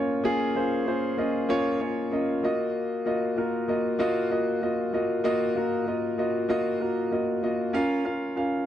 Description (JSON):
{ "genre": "pop", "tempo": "96 BPM", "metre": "4/4", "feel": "straight", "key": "unclear", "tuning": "A4 = 440 Hz", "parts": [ { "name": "warm concert grand piano", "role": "solo", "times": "0.0-8.7 s", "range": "Bb3 to F5", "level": "-24 LUFS", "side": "equal", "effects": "none" } ], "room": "light reverb", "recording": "dry, close 1970s-style studio recording", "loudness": "-24 LUFS", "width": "side -11 dB against mid", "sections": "0.0-8.7 A section", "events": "none", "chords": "0.0 Bbm; 2.4 Ebmadd9; 7.7 Bbm" }